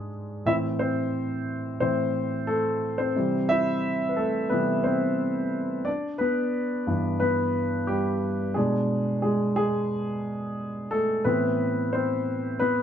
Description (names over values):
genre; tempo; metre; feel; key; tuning
pop; 89 BPM; 4/4; straight; unclear; A4 = 439 Hz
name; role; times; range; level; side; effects
warm grand piano; solo; 0.0-12.8 s; G2 to E5; -24 LUFS; equal; none
room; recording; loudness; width
moderate studio reverb, RT60 0.9 s; band playing live in one room, nothing above 7.9 kHz; -24 LUFS; side -9 dB against mid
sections
0.0-12.8 A section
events
grand piano solo 0.0-12.8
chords
0.5 Am; 3.2 C; 5.9 G6; 8.6 Bm6; 11.3 Amadd9